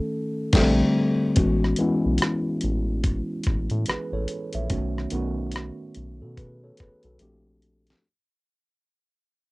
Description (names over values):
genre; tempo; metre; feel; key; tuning
R&B, neo-soul; 72 BPM; 4/4; swing 61% on 16ths; A lydian; A4 = 440 Hz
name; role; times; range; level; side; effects
tine electric piano; accompaniment; 0.0-8.1 s; D3 to E5; -24 LUFS; left 1 dB; auto-pan, cassette tape
round analog bass; bass; 0.5-7.9 s; A1 to B2; -27 LUFS; equal; transformer saturation
dusty soul sampler-style drum kit; drums; 0.5-8.0 s; crash cymbal, hi-hat, kick drum, rim click, snare drum; -24 LUFS; equal; none
room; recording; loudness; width
light reverb; home recording on cassette; -22 LUFS; side -24 dB against mid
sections
0.0-1.4 A section; 1.4-8.0 B section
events
break 0.0-1.4; band accent 0.0-1.4; tine electric piano solo 0.0-1.4; fade-out 1.4-8.0; drum fill 7.2-8.0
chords
0.0 B9 (rootless); 0.5 Bbmaj13; 1.4 Amaj13; 4.7 B9; 7.2 Bbmaj13